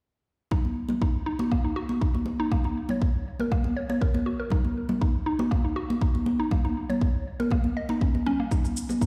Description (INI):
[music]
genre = afro house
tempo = 120 BPM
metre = 4/4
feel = swing 53% on 16ths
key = Eb minor pentatonic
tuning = A4 = 438 Hz
[part]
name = mallet-like synth pluck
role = arpeggios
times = 0.5-9.1 s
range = Bb3 to Eb5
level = -33 LUFS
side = equal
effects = chorus, sidechain pumping, tape echo
[part]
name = electronic kick drum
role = drums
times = 0.5-9.1 s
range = none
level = -27 LUFS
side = equal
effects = none
[part]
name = congas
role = percussion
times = 0.5-9.0 s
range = none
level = -31 LUFS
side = equal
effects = none
[part]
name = cabasa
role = drums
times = 8.5-9.1 s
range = none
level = -40 LUFS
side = equal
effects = none
[sound]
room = light reverb, digital ambience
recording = played on a big sound system in a bare room, stone room reverb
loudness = -26 LUFS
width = mono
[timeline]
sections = 0.5-9.1 A section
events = none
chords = none